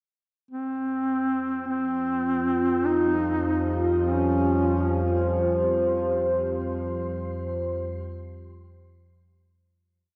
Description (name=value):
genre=dark ambient drone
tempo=free time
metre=none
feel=none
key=unclear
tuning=A4 = 440 Hz
part: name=dark duduk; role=melody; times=0.5-5.2 s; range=C4 to Eb4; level=-28 LUFS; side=equal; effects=shimmer reverb, analog delay
part: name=deep dark ambient pad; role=sustained chords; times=2.3-9.9 s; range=F4 to C5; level=-29 LUFS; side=equal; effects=chorus, built-in reverb, shimmer reverb
part: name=analog drone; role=drone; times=2.0-10.0 s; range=F2 to F3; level=-32 LUFS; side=equal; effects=chorus
room=wet plate reverb, RT60 2.8 s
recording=dreamy mix soaked in reverb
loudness=-25 LUFS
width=mono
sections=0.5-9.9 A section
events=fade-in on synth drone 0.5-9.9; fade-out 5.2-9.9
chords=0.5 Fsus2